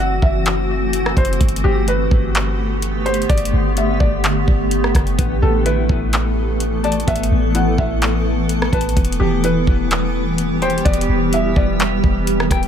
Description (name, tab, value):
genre	hip hop, atmospheric cloud-rap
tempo	127 BPM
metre	4/4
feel	half-time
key	E minor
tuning	A4 = 441 Hz
part	felt-muted upright piano	melody	0.0-11.8 s	G4 to F#5	-24 LUFS	equal	low-pass filter, ping-pong delay
part	granular cloud pad	sustained chords	0.0-12.7 s	D3 to A4	-20 LUFS	equal	built-in reverb, sidechain pumping
part	clean 808-style bass	bass	0.0-12.7 s	D1 to A1	-20 LUFS	equal	none
part	smooth R&B drum kit	drums	0.2-12.7 s	handclaps, hi-hat, kick drum, rim click	-20 LUFS	equal	none
part	mellow electric guitar	arpeggios	5.2-12.7 s	B3 to A5	-26 LUFS	left 10 dB	tremolo, low-pass filter, ping-pong delay
room	digital ambience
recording	none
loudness	-15 LUFS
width	side -8 dB against mid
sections	0.0-12.7 A section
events	none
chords	0.0 F#m7b5; 1.4 Gadd9; 5.2 Asus2; 9.0 Em